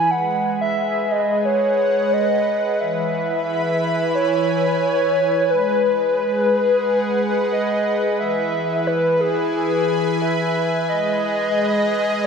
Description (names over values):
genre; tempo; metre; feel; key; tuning
IDM; 89 BPM; 4/4; straight; unclear; A4 = 441 Hz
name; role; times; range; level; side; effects
warbly nostalgic lead; melody; 0.0-12.3 s; G#4 to G#5; -19 LUFS; equal; chorus, ping-pong delay
warm analog pad; sustained chords; 0.0-12.3 s; E3 to B5; -21 LUFS; equal; chorus
room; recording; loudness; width
wet plate reverb, RT60 2.9 s; dreamy mix soaked in reverb; -17 LUFS; side -6 dB against mid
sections
0.0-12.3 A section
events
none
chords
0.1 G#m7; 2.8 E; 5.5 G#m7; 8.2 E; 10.9 G#m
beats
| 0.11 0.78 1.46 2.13 | 2.81 3.48 4.15 4.83 | 5.50 6.18 6.85 7.53 | 8.20 8.87 9.55 10.22 | 10.89 11.57 12.24